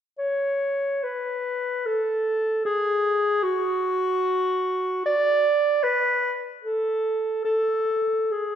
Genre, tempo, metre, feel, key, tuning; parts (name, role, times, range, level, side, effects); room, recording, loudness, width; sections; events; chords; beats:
classical, free, expressive piece for unaccompanied clarinet; 74 BPM; 3/4; uneven beats, rubato; A major; A4 = 440 Hz
mellow clarinet; solo; 0.2-8.6 s; F#4 to D5; -22 LUFS; equal
wet scoring stage reverb, RT60 1.6 s; heard from further back in the room; -22 LUFS; side -9 dB against mid
0.2-8.6 A section
| 0.21 1.04 1.85 | 2.65 3.46 4.22 | 5.06 5.85 6.64 | 7.46 8.32